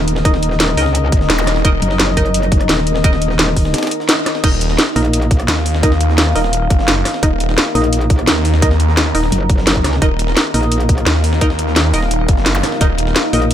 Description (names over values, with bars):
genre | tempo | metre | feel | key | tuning
dark technical drum and bass | 172 BPM | 4/4 | straight | Eb minor | A4 = 440 Hz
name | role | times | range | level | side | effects
deep dark ambient pad | sustained chords | 0.0-13.5 s | Eb4 to Bb5 | -21 LUFS | left 1 dB | chorus, built-in reverb, vintage 12-bit sampler grit, sidechain pumping
filtered dub chord stab | stabs | 0.0-13.5 s | Eb4 to Eb5 | -22 LUFS | equal | lush chorus, digital delay
metallic wobble bass | bass | 0.0-5.5, 7.8-11.1, 13.3-13.5 s | Eb1 to Db2 | -16 LUFS | equal | chorus
breakbeat sampler-style drum kit | drums | 0.1-13.5 s | hi-hat, snare drum | -25 LUFS | equal | high-pass filter on hats, high-pass filter on snare, high-pass filter on room
drum and bass drum kit | drums | 0.1-13.5 s | crash cymbal, hi-hat, rim click, snare drum | -17 LUFS | equal | none
electronic kick drum | drums | 0.3-12.9 s | none | -14 LUFS | equal | none
snarling distorted saw bass | bass | 1.3-1.8, 4.4-13.1 s | Eb1 to Eb2 | -16 LUFS | equal | distortion, tube saturation, sidechain pumping
zap | sound effects | 1.4-1.5, 12.5-12.6 s | none | -25 LUFS | equal | none
room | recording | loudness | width
little or no reverb | none | -12 LUFS | side -10 dB against mid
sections
0.0-4.4 A section; 4.4-13.5 A section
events
drop 0.0-4.4, 4.4-13.5; band accent 4.1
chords
0.0 Eb5